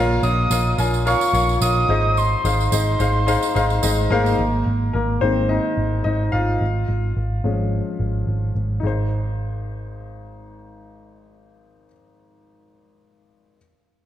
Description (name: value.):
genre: piano-driven pop.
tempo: 108 BPM.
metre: 4/4.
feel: swing 56% on 16ths.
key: Ab major.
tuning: A4 = 445 Hz.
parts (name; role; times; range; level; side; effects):
clear upright piano; accompaniment; 0.0-13.6 s; Ab1 to Ab5; -22 LUFS; left 2 dB; none.
vintage muted picked electric bass; bass; 0.0-11.9 s; Ab1 to Bb1; -21 LUFS; right 1 dB; none.
soft octave-layered synth lead; melody; 0.2-4.1 s; C6 to Eb6; -23 LUFS; equal; chorus.
tambourine; percussion; 0.2-4.4 s; none; -31 LUFS; right 10 dB; none.
room: moderate concert hall reverb, RT60 2.2 s.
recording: none.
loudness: -18 LUFS.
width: side -11 dB against mid.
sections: 0.0-4.4 A section; 4.4-8.8 B section; 8.8-11.1 C section.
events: upright piano solo 4.4-8.8.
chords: 0.0 Bbm; 1.9 Ab; 6.6 Db/Ab; 8.8 Ab.